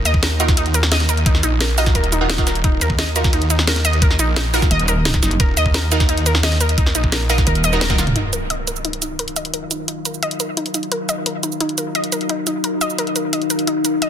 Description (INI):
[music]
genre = dark technical drum and bass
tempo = 174 BPM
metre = 4/4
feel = straight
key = Eb minor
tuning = A4 = 441 Hz
[part]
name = snarling distorted saw bass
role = bass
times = 0.0-7.5 s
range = Eb1 to Eb2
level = -19 LUFS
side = equal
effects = distortion, tube saturation
[part]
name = wide unison pluck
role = arpeggios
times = 0.1-14.1 s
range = Eb4 to Eb5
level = -22 LUFS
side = equal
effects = sidechain pumping, dub echo
[part]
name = drum and bass drum kit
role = drums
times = 0.1-14.1 s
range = hi-hat, shaker, snare drum, toms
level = -20 LUFS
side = right 1 dB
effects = none
[part]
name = electronic kick drum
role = drums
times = 0.1-8.0 s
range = none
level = -18 LUFS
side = equal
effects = none
[part]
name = orchestra-hit-like synth stab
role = stabs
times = 0.4-8.0 s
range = Eb4 to Bb4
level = -25 LUFS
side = right 3 dB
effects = built-in reverb, dub echo
[part]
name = metallic wobble bass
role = bass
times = 4.7-5.4, 7.5-8.1 s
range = Eb1 to Gb1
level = -19 LUFS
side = equal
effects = distortion, chorus, tube saturation
[part]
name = deep dark ambient pad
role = sustained chords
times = 9.0-14.1 s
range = Eb4 to F5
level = -23 LUFS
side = left 3 dB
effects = chorus, built-in reverb, sidechain pumping
[part]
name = impact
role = sound effects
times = 8.2-9.5 s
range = none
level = -30 LUFS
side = equal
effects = none
[sound]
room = little or no reverb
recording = dense, heavily limited modern master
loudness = -15 LUFS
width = side -9 dB against mid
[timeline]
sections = 0.0-8.2 A section; 8.2-14.1 B section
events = drop 0.0-8.2; drum fill 7.8-8.2; band accent 7.8; impact 8.2-9.5; filter sweep on synth arpeggio sound 8.2-14.1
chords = 0.0 Ebmadd9